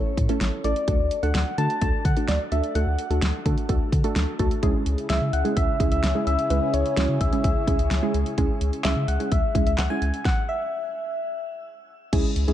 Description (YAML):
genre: synth-pop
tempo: 128 BPM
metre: 4/4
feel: straight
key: C# phrygian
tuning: A4 = 441 Hz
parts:
  - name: soft struck synth lead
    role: melody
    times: 0.0-11.9 s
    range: C#5 to A5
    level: -28 LUFS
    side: left 2 dB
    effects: chorus, phaser, digital delay, shimmer reverb
  - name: warbly dusty pluck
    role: accompaniment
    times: 0.0-12.5 s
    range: G#3 to B4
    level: -28 LUFS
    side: right 2 dB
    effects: chorus, shimmer reverb
  - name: round analog bass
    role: bass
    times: 0.0-12.5 s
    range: A1 to D3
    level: -25 LUFS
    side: equal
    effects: none
  - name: pop drum kit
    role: drums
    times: 0.2-12.5 s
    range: crash cymbal, handclaps, hi-hat, kick drum, snare drum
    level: -25 LUFS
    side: equal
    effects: none
  - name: brassy analog pad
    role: sustained chords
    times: 4.6-12.5 s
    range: C#3 to G#4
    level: -32 LUFS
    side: equal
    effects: chorus, shimmer reverb
room: moderate plate reverb, RT60 2.0 s, digital ambience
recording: dark, warm production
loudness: -21 LUFS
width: side -11 dB against mid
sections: 0.0-4.6 A section; 4.6-12.1 B section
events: stop 10.3-12.1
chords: 0.0 A; 0.9 D; 4.6 C#m